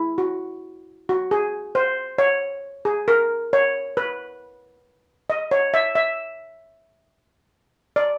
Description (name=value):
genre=calypso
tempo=135 BPM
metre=4/4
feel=straight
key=E major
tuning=A4 = 440 Hz
part: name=steel pan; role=solo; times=0.0-8.2 s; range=E4 to E5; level=-22 LUFS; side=equal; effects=none
room=moderate studio reverb, RT60 0.5 s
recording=none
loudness=-22 LUFS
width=mono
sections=0.0-8.2 A section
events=steel pan solo 0.0-8.2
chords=none